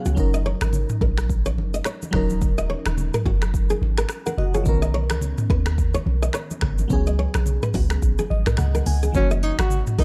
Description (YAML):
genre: afrobeats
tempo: 107 BPM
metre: 4/4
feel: swing 58% on 16ths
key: F# major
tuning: A4 = 440 Hz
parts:
  - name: crystalline FM electric piano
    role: accompaniment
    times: 0.0-10.0 s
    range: D#3 to G#5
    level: -32 LUFS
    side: equal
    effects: chorus
  - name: nylon-string guitar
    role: riff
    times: 0.1-10.0 s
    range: F#4 to D#5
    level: -31 LUFS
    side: equal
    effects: tape echo
  - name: warm 808-style bass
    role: bass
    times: 0.1-10.0 s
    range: D#1 to D#2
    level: -25 LUFS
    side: equal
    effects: none
  - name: afro-pop drum kit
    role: drums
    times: 0.1-10.0 s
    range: finger snaps, hi-hat, kick drum, rim click, shaker, toms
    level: -26 LUFS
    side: equal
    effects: none
  - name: congas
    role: percussion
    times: 0.1-10.0 s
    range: none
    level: -34 LUFS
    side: equal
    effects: none
  - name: breathy alto saxophone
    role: melody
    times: 9.2-10.0 s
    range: C#4 to F#4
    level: -28 LUFS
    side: equal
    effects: none
room: little or no reverb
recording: dark, warm production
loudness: -22 LUFS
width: mono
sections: 0.2-9.1 A section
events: FM electric piano fill 0.0, 8.0-9.1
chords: 0.2 F#6; 2.1 D#m7; 4.7 Bmaj9; 6.9 C#7sus4; 9.1 F#6